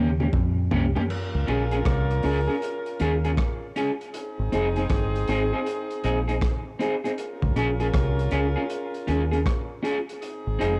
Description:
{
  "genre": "roots reggae",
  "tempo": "79 BPM",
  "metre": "4/4",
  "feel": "swing 64% on 16ths",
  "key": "unclear",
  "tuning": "A4 = 445 Hz",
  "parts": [
    { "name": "electric guitar at the edge of break-up", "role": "accompaniment", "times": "0.0-10.7 s", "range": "Bb3 to Ab4", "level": "-30 LUFS", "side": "equal", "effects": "harmonic tremolo, cassette tape, tape echo" },
    { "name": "deep dub fingered electric bass", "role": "bass", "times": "0.0-10.8 s", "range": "F1 to F2", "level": "-27 LUFS", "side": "equal", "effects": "none" },
    { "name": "crunchy breakbeat drum kit", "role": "drums", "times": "0.2-10.8 s", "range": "crash cymbal, hi-hat, kick drum, rim click, toms", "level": "-31 LUFS", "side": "equal", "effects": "cassette tape" },
    { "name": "warm horn section", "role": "second line", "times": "1.1-10.8 s", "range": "C4 to Bb4", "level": "-34 LUFS", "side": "equal", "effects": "cassette tape, tape echo" }
  ],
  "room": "light reverb, studio ambience",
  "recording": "home recording on cassette",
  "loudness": "-25 LUFS",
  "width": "mono",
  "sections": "0.0-1.1 A section; 1.1-10.8 B section",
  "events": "drum fill 0.0-1.1",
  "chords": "0.0 Eb7; 1.1 Db; 4.1 Ab; 7.2 Db; 10.2 Ab",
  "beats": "0.34 | 1.10 1.86 2.62 3.38 | 4.14 4.90 5.66 6.42 | 7.18 7.94 8.70 9.46 | 10.22"
}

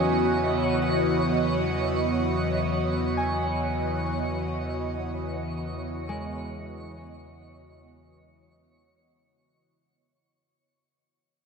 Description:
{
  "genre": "ambient",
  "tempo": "free time",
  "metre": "none",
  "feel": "none",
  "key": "unclear",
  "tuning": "A4 = 439 Hz",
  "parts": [
    { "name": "airy breathy pad", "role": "sustained chords", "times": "0.0-10.1 s", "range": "E3 to D#5", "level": "-27 LUFS", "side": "equal", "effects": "chorus, phaser" },
    { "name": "concert harp", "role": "arpeggios", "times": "0.0-10.0 s", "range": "G#3 to G#5", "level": "-33 LUFS", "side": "equal", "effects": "tape echo" },
    { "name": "deep rumbling drone", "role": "bass", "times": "0.0-10.0 s", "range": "E2", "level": "-34 LUFS", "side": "equal", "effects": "built-in reverb" },
    { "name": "analog drone", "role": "drone", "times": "0.0-10.2 s", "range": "C#3 to F#3", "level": "-36 LUFS", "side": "left 1 dB", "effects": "chorus" },
    { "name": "twinkling granular texture", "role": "texture", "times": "0.0-10.1 s", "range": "C#5", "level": "-33 LUFS", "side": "right 2 dB", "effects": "built-in reverb" }
  ],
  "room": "wet huge ambient reverb, RT60 7.6 s",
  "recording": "none",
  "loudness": "-24 LUFS",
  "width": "side -5 dB against mid",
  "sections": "0.0-10.1 A section",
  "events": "fade-out 0.7-10.1",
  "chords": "0.0 Emaj9",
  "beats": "free time"
}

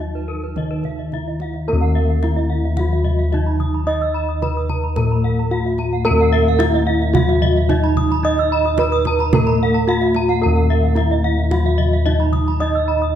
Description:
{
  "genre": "Balinese gamelan",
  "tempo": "110 BPM",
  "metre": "4/4",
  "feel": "straight",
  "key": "Eb pelog",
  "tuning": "A4 = 440 Hz",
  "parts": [
    { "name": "gamelan-type bronze metallophone", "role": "melody", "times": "0.0-13.2 s", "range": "Eb4 to Eb5", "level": "-20 LUFS", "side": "right 1 dB", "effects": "none" },
    { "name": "gamelan-type bronze metallophone", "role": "accompaniment", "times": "0.0-13.2 s", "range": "Eb3 to Eb4", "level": "-27 LUFS", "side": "right 1 dB", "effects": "none" },
    { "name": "gamelan-type bronze metallophone", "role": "arpeggios", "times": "0.0-13.0 s", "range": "Bb4-45c to Eb6", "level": "-26 LUFS", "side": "left 5 dB", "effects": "none" },
    { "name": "gamelan-type bossed gongs", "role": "bass", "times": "0.0-13.2 s", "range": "Eb2 to Eb5", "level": "-18 LUFS", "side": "left 1 dB", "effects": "none" },
    { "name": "kendang", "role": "percussion", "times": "0.0-12.5 s", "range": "none", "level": "-24 LUFS", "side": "right 4 dB", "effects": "none" },
    { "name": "gamelan-type bronze metallophone", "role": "arpeggios", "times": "0.2-13.2 s", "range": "Cb5-40c to Fb6", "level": "-28 LUFS", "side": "right 5 dB", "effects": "none" }
  ],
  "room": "moderate recital hall reverb, RT60 1.5 s",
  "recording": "dark, warm production",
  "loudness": "-15 LUFS",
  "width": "side -10 dB against mid",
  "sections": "0.0-1.7 A section; 1.7-13.2 B section",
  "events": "none",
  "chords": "none",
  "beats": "0.56 1.13 | 1.68 2.23 2.77 3.32 | 3.87 4.41 4.96 5.50 | 6.05 6.60 7.15 7.69 | 8.24 8.79 9.33 9.88 | 10.43 10.97 11.52 12.07 | 12.61"
}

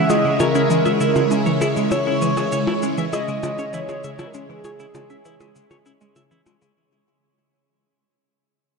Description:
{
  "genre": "ambient, sequencer-driven space music",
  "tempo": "99 BPM",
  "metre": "4/4",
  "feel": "straight",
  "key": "unclear",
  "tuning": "A4 = 440 Hz",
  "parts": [
    { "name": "pulse-width lead", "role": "melody", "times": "0.0-6.2 s", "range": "G#4 to E5", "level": "-23 LUFS", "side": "right 2 dB", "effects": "chorus, ping-pong delay" },
    { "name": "phased string machine", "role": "sustained chords", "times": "0.0-6.8 s", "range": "C#3 to E4", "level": "-22 LUFS", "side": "equal", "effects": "ensemble chorus, phaser" },
    { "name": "clean electric guitar", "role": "arpeggios", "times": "0.0-6.7 s", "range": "G#3 to E5", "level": "-30 LUFS", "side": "moving between left 4 dB and right 2 dB", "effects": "auto-pan, ping-pong delay" },
    { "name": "hollow square pluck", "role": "riff", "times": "0.0-6.7 s", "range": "C#3 to G#4", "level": "-25 LUFS", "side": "equal", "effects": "chorus, ping-pong delay" },
    { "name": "bubbling stepped-filter texture", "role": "texture", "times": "0.0-6.8 s", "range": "C#5", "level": "-35 LUFS", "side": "right 1 dB", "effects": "chorus, built-in reverb" },
    { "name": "percussion blips and cabasa", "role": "percussion", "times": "0.1-6.7 s", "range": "none", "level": "-28 LUFS", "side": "left 1 dB", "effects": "ping-pong delay" }
  ],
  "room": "wet huge ambient reverb, RT60 6.9 s",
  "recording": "dark, warm production",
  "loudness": "-17 LUFS",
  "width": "side -4 dB against mid",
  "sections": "0.0-6.8 A section",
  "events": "fade-out 0.0-6.8",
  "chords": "0.0 C#m",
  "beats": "0.10 0.71 1.31 | 1.92 2.52 3.13 3.74 | 4.34 4.95 5.55 6.16"
}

